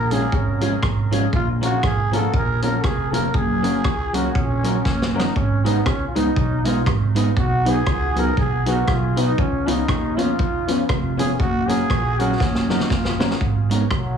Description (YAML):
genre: ska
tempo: 119 BPM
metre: 4/4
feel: swing 59% on 8ths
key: G# dorian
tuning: A4 = 439 Hz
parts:
  - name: growling trombone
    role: melody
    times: 0.0-14.2 s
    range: F#3 to A#4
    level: -25 LUFS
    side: right 2 dB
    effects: dub echo, plate reverb
  - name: upright bass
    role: bass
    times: 0.0-14.2 s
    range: E#1 to E#2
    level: -23 LUFS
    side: right 1 dB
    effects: none
  - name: electric guitar at the edge of break-up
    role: accompaniment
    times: 0.1-13.8 s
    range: E#3 to D#4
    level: -25 LUFS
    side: right 3 dB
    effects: none
  - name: warm upright piano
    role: stabs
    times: 0.1-13.3 s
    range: C#4 to B4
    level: -26 LUFS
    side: left 5 dB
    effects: dub echo
  - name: vintage drum kit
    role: drums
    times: 0.1-14.0 s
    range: hi-hat, kick drum, rim click, snare drum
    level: -23 LUFS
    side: equal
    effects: none
room: light reverb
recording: heavily compressed radio sound, small room reverb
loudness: -18 LUFS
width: side -7 dB against mid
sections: 0.0-13.4 A section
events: trombone solo 0.0-13.4; drum fill 4.9-5.4, 12.4-13.4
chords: 0.0 C#; 1.3 A#m; 3.3 F#; 5.4 G#m; 7.4 B; 9.4 C#7; 11.4 F#; 13.4 G#m